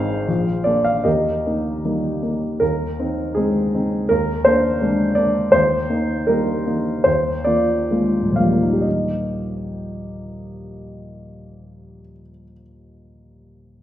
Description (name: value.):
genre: classical, romantic character piece for solo piano.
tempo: 60-84 BPM.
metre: 2/4.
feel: rubato.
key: Eb major.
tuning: A4 = 437 Hz.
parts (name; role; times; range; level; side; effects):
warm upright piano; solo; 0.0-13.8 s; Eb1 to F5; -17 LUFS; equal; none.
room: wet recital hall reverb, RT60 1.5 s.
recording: heard from further back in the room.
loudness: -17 LUFS.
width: side -12 dB against mid.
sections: 0.0-2.6 A section; 2.6-8.8 B section; 8.8-12.1 C section.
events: slowing down 4.8-8.8.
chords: 0.3 Bb; 1.1 Eb; 2.6 Ab/Eb; 4.1 Bb7/Eb; 5.5 Eb; 7.1 Bb7/Eb; 8.8 Eb.